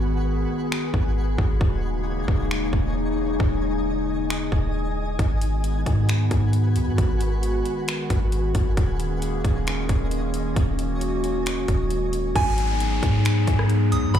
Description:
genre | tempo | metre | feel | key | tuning
hip hop, atmospheric cloud-rap | 134 BPM | 4/4 | half-time | G# minor | A4 = 440 Hz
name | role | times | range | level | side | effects
warbly tape-like pad | sustained chords | 0.0-14.2 s | C#3 to G#4 | -26 LUFS | left 1 dB | chorus, built-in reverb, sidechain pumping
warm 808-style bass | bass | 0.0-14.2 s | D#1 to G#2 | -24 LUFS | equal | none
twinkling granular texture | texture | 0.0-12.3 s | D#4 to G#5 | -35 LUFS | left 1 dB | built-in reverb
trap drum kit | drums | 0.7-14.2 s | finger snaps, hi-hat, kick drum, rim click | -24 LUFS | equal | none
soft synth bell | melody | 12.4-14.2 s | G#5 to D#6 | -27 LUFS | equal | chorus, phaser, tape echo
downlifter | sound effects | 12.4-14.2 s | none | -32 LUFS | equal | none
room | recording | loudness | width
little or no reverb | played on a big sound system in a bare room, large studio reverb | -20 LUFS | side -10 dB against mid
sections
0.0-12.4 A section; 12.4-14.2 B section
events
break 0.0-5.2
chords
0.0 G#m7; 1.6 D#7sus4; 5.2 G#m7; 8.8 D#7sus4; 12.4 G#m7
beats
0.27 0.71 1.16 | 1.61 2.06 2.50 2.95 | 3.40 3.85 4.30 4.74 | 5.19 5.64 6.09 6.53 | 6.98 7.43 7.88 8.33 | 8.77 9.22 9.67 10.12 | 10.56 11.01 11.46 11.91 | 12.36 12.80 13.25 13.70 | 14.15

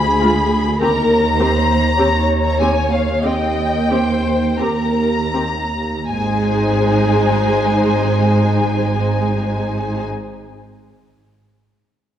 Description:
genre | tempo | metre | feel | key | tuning
classical, slow romantic movement for string orchestra | 38-53 BPM | 4/4 | rubato | Ab major | A4 = 441 Hz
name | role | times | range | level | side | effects
rich studio violin section | melody | 0.0-10.0 s | F5 to B5 | -21 LUFS | left 3 dB | none
warm studio violin section | second line | 0.0-10.0 s | Ab4 to Eb5 | -21 LUFS | left 3 dB | none
rich studio cello section | bass | 0.0-10.0 s | D2 to Ab2 | -21 LUFS | right 2 dB | none
warm studio double bass section | bass | 0.0-10.0 s | Ab1 to Eb2 | -22 LUFS | right 3 dB | none
rich studio viola section | accompaniment | 0.2-10.0 s | Ab3 to G4 | -21 LUFS | right 2 dB | none
room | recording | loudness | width
moderate scoring stage reverb, RT60 2.0 s | worn, warbling old tape, cassette tape, warbly pitch drift | -14 LUFS | side -10 dB against mid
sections
0.0-6.1 A section; 6.1-11.9 B section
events
slowing down 0.0-6.1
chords
0.0 Ddim7(no3); 0.8 Eb6; 6.1 Ab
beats
| 0.81 1.99 3.24 4.59 | 6.09 7.54 9.00

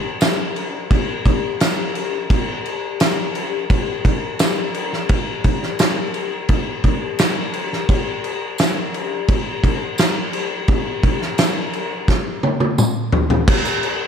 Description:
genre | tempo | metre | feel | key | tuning
rock | 86 BPM | 4/4 | straight | none | none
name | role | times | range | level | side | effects
loose indie drum kit | drums | 0.2-14.0 s | crash cymbal, kick drum, snare drum, toms | -17 LUFS | equal | none
tambourine | percussion | 0.2-13.8 s | none | -34 LUFS | right 4 dB | none
room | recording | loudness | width
light reverb, studio reverb | none | -17 LUFS | side -7 dB against mid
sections
0.0-13.5 A section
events
drum fill 12.1-13.5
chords
none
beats
0.21 0.91 1.60 | 2.30 3.00 3.69 4.39 | 5.09 5.79 6.49 7.19 | 7.88 8.58 9.28 9.98 | 10.68 11.38 12.08 12.77 | 13.47

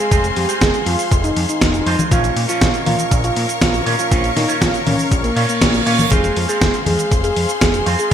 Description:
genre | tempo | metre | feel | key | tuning
italo disco | 120 BPM | 4/4 | straight | F minor | A4 = 440 Hz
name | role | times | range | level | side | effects
soft octave-layered synth lead | melody | 0.0-8.1 s | Bb3 to Ab4 | -20 LUFS | equal | chorus, digital delay, shimmer reverb
rich studio string section | sustained chords | 0.0-8.1 s | Ab4 to Db6 | -24 LUFS | left 2 dB | shimmer reverb
electric guitar with an envelope filter | stabs | 0.0-8.1 s | Bb2 to Db5 | -24 LUFS | right 3 dB | wide subtle chorus, shimmer reverb
fat analog bass | bass | 0.1-8.1 s | F1 to Bb2 | -21 LUFS | equal | none
dusty soul sampler-style drum kit | drums | 0.1-8.1 s | cabasa, congas, hi-hat, snare drum | -20 LUFS | equal | studio reverb, gated reverb
electronic kick drum | drums | 0.1-8.1 s | none | -18 LUFS | equal | studio reverb
reverse cymbal | sound effects | 5.3-6.1 s | none | -25 LUFS | right 5 dB | none
room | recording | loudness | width
moderate plate reverb, RT60 1.8 s | bright 1980s-style digital production | -14 LUFS | side -9 dB against mid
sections
0.0-8.1 A section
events
reverse cymbal 5.3-6.1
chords
0.0 Fm; 2.1 Bbm; 6.1 Fm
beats
| 0.11 0.61 1.11 1.61 | 2.11 2.61 3.11 3.61 | 4.11 4.61 5.11 5.61 | 6.11 6.61 7.11 7.61 | 8.11

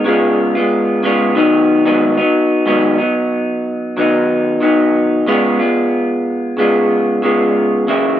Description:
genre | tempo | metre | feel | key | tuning
indie pop | 92 BPM | 4/4 | swing 55% on 16ths | G# minor | A4 = 437 Hz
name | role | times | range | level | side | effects
electric guitar through a small old amp | solo | 0.0-8.2 s | F#2 to E#4 | -12 LUFS | equal | vibrato effect
room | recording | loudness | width
little or no reverb | recorded outdoors, with no room sound | -12 LUFS | side -11 dB against mid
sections
0.0-2.7 A section; 2.7-8.2 B section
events
none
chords
0.1 C#7; 1.4 G#m7; 5.3 C#7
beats
| 0.05 0.70 1.36 2.01 | 2.66 3.31 3.97 4.62 | 5.28 5.93 6.58 7.23 | 7.89

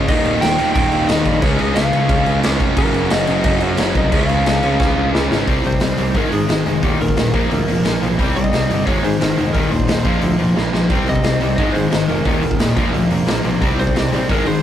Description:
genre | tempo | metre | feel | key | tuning
punk rock | 177 BPM | 4/4 | straight | unclear | A4 = 437 Hz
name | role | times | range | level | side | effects
distorted electric guitar | riff | 0.0-14.6 s | Eb2 to Ab4 | -24 LUFS | equal | overdrive
sludgy distorted guitar | riff | 0.0-14.6 s | Eb2 to Db4 | -21 LUFS | right 2 dB | overdrive
tight distorted guitar | riff | 0.0-14.6 s | Eb2 to Db4 | -23 LUFS | left 5 dB | distortion
modern bright picked electric bass | bass | 0.0-14.6 s | Eb1 to Ab2 | -22 LUFS | equal | none
lightly driven lead guitar | melody | 0.1-14.6 s | G4 to G5 | -23 LUFS | equal | none
raw garage drum kit | drums | 0.1-14.5 s | crash cymbal, hi-hat, kick drum, snare drum | -20 LUFS | equal | none
room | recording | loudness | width
light reverb | rough rehearsal-room recording, tube saturation | -14 LUFS | side -10 dB against mid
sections
0.0-5.5 A section; 5.5-14.6 B section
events
drum fill 4.8-5.5, 10.6-10.9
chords
0.1 Eb; 1.4 Db; 2.8 Gb; 4.1 Db; 5.5 C5; 6.2 Ab5; 6.8 Eb5; 7.3 Bb; 8.2 Cm; 8.9 Ab; 9.5 Eb5; 10.1 Bb; 10.9 Cm; 11.6 Ab; 12.3 Eb5; 12.8 Bb; 13.6 C5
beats
| 0.08 0.42 0.76 1.09 | 1.43 1.77 2.10 2.44 | 2.78 3.12 3.45 3.79 | 4.13 4.46 4.80 5.14 | 5.48 5.82 6.16 6.50 | 6.83 7.17 7.51 7.85 | 8.19 8.53 8.87 9.21 | 9.55 9.89 10.23 10.57 | 10.90 11.24 11.58 11.92 | 12.26 12.60 12.94 13.28 | 13.62 13.96 14.30

